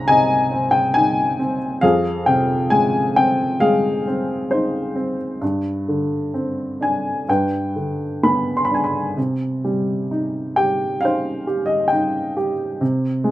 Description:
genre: classical, lyrical solo piano.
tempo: 66 BPM.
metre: 4/4.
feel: uneven beats, rubato.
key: C minor.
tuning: A4 = 440 Hz.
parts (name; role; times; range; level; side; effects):
warm upright piano; solo; 0.0-13.3 s; C2 to C6; -17 LUFS; equal; none.
room: little or no reverb.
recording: close, detailed microphones.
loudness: -17 LUFS.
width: side -15 dB against mid.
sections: 0.0-13.3 A section.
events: none.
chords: 0.0 Ab/C; 1.8 Fm7; 5.4 Gsus4; 7.3 G; 9.2 Cm; 12.8 Ab/C.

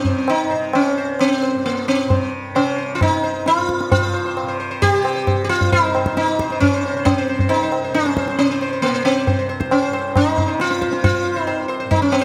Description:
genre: indian classical, Hindustani.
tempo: 134 BPM.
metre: 4/4.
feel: straight.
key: C raga bhairavi.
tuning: A4 = 440 Hz.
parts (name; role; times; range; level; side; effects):
sitar; melody; 0.0-12.2 s; Bb3 to C5; -20 LUFS; equal; none.
tanpura; drone; 0.0-12.2 s; C2 to C3; -31 LUFS; equal; none.
tabla; percussion; 0.0-12.2 s; none; -24 LUFS; equal; none.
room: moderate concert hall reverb, RT60 2.0 s.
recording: none.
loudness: -18 LUFS.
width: mono.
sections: 0.0-3.9 A section; 3.9-12.2 B section.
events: speeding up 0.0-12.2.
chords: none.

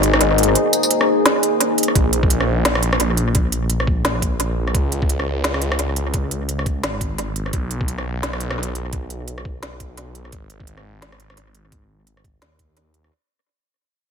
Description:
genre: half-time drum and bass.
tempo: 172 BPM.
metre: 4/4.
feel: swing 59% on 16ths, half-time.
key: unclear.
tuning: A4 = 438 Hz.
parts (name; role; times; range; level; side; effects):
deep dark ambient pad; sustained chords; 0.0-1.9 s; Bb3 to C5; -19 LUFS; left 2 dB; chorus, built-in reverb, sidechain pumping.
phased detuned saw bass; bass; 0.0-13.1 s; Ab1 to Eb2; -22 LUFS; equal; phaser.
organic electronic drum kit; drums; 0.0-13.1 s; hi-hat, rim click, snare drum, tambourine; -21 LUFS; right 1 dB; overdrive, tape echo.
electronic kick drum; drums; 2.0-12.7 s; none; -21 LUFS; equal; none.
room: moderate echo chamber reverb, RT60 1.5 s.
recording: echo-heavy mix.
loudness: -17 LUFS.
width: side -6 dB against mid.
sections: 0.0-2.0 A section; 2.0-13.1 B section.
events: drop 0.0-2.0; fade-out 2.0-13.1.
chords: 0.0 Abadd9; 2.0 N.C.; 4.7 Db5; 7.5 N.C.; 10.3 Ab5.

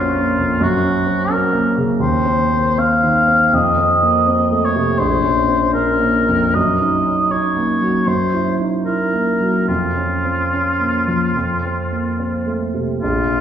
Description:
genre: classical, romantic duo for oboe and grand piano.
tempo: 63-89 BPM.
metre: 4/4.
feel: rubato.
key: Bb minor.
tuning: A4 = 440 Hz.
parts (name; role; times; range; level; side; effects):
warm oboe; melody; 0.0-13.4 s; F4 to F5; -18 LUFS; left 1 dB; none.
warm concert grand piano; accompaniment; 0.0-13.4 s; Bb1 to Fb4; -17 LUFS; right 1 dB; none.
room: wet concert hall reverb, RT60 1.8 s.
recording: recorded in a church or concert hall.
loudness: -14 LUFS.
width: side -9 dB against mid.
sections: 0.0-13.0 A section.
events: none.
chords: 0.0 Bbm; 0.6 Gb; 2.0 Cmadd11/Eb; 3.5 F7; 5.0 Bbm; 6.6 Ebm/Gb; 8.1 Gb7; 9.7 Bbm/F; 11.3 F.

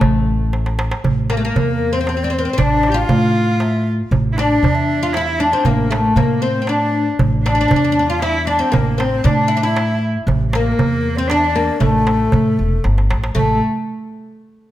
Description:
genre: Arabic maqam ensemble.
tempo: 117 BPM.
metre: 3/4.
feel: straight.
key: A maqam kurd.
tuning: A4 = 440 Hz.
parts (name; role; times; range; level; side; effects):
oud; melody; 0.0-13.6 s; A3 to G4; -19 LUFS; left 3 dB; none.
upright bass; bass; 0.0-13.6 s; E1 to A2; -19 LUFS; equal; none.
darbuka; percussion; 0.0-13.6 s; none; -20 LUFS; right 4 dB; none.
breathy low ney; second line; 1.3-13.6 s; A4 to F5; -25 LUFS; left 5 dB; none.
warm cello; second line; 1.3-13.6 s; A3 to G4; -22 LUFS; right 2 dB; none.
room: moderate recital hall reverb, RT60 1.4 s.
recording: close, detailed microphones.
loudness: -14 LUFS.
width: side -13 dB against mid.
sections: 0.0-1.0 A section; 1.0-13.4 B section; 13.4-14.7 C section.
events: drum fill 0.5-1.0, 12.8-13.4.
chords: none.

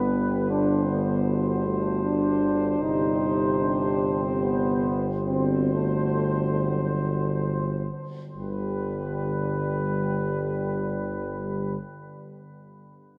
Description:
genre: classical, hymn-like piece for brass band.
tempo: 49-81 BPM.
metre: 3/4.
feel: rubato.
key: G major.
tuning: A4 = 442 Hz.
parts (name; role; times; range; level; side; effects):
mellow trumpet section; melody; 0.0-11.8 s; B4 to C5; -36 LUFS; equal; none.
mellow French horn section; second line; 0.0-11.8 s; F#4 to G4; -36 LUFS; equal; none.
bright trombone; accompaniment; 0.0-11.8 s; C3 to D3; -35 LUFS; equal; none.
mellow trombone section; accompaniment; 0.0-11.8 s; F#3 to Eb4; -31 LUFS; equal; none.
warm tuba; bass; 0.0-11.8 s; G1; -31 LUFS; equal; none.
room: wet cathedral reverb, RT60 5.2 s.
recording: none.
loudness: -26 LUFS.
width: mono.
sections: 0.0-8.4 A section; 8.4-11.6 B section.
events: slowing down 1.6-8.4.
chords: 0.5 D7/G; 2.8 Cm/G; 5.3 D7/G; 8.4 G.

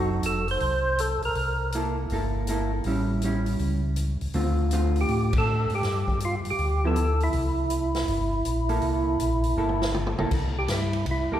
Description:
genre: soul jazz organ trio.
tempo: 161 BPM.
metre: 4/4.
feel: swing 66% on 8ths.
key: C mixolydian.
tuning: A4 = 441 Hz.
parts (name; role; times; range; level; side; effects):
percussive tonewheel organ; melody; 0.0-1.7, 5.0-11.4 s; E4 to C5; -27 LUFS; right 2 dB; slow rotary speaker, overdrive.
vintage hollow-body jazz guitar; accompaniment; 0.0-11.4 s; D3 to A4; -29 LUFS; right 2 dB; none.
mellow tonewheel organ; bass; 0.0-11.4 s; F1 to A2; -27 LUFS; left 1 dB; slow rotary speaker.
swinging big-band drum kit; drums; 0.2-11.2 s; crash cymbal, hi-hat, kick drum, ride cymbal, snare drum, toms; -33 LUFS; left 1 dB; none.
room: wet concert hall reverb, RT60 2.1 s.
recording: recorded in a church or concert hall.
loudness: -23 LUFS.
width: side -11 dB against mid.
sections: 0.0-10.3 A section; 10.3-11.4 B section.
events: band accent 5.3; drum fill 9.6-10.3; tonewheel organ solo 10.3-11.4.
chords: 0.0 F#dim7; 1.4 C6; 2.8 A7; 4.3 Dm7; 5.8 Gsus2; 7.3 C6; 10.3 C.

